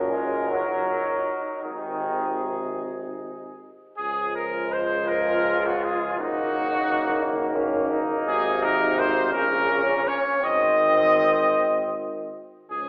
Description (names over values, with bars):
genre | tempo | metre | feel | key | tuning
classical, hymn-like piece for brass band | 50-58 BPM (dotted quarters) | 6/8 | rubato | unclear | A4 = 440 Hz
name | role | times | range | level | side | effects
mellow trumpet section | melody | 0.0-12.9 s | Gb4 to Eb5 | -27 LUFS | equal | none
mellow flugelhorn | second line | 0.0-12.9 s | Bb3 to F4 | -33 LUFS | equal | none
clear trombone section | accompaniment | 0.0-12.9 s | Eb3 to Db4 | -32 LUFS | equal | none
warm euphonium | accompaniment | 0.0-12.9 s | Bb2 to F3 | -33 LUFS | equal | none
warm tuba | bass | 0.0-12.9 s | Gb1 to Db2 | -34 LUFS | equal | none
room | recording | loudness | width
wet recital hall reverb, RT60 1.6 s | recorded in a church or concert hall, telephone sound | -24 LUFS | mono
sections
0.0-4.0 A section; 4.0-12.9 B section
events
none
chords
0.5 Ebm/Gb; 1.6 Ab; 4.0 Db; 6.2 Ebm/Gb; 8.3 Abadd9; 9.3 Bbm; 10.4 Ab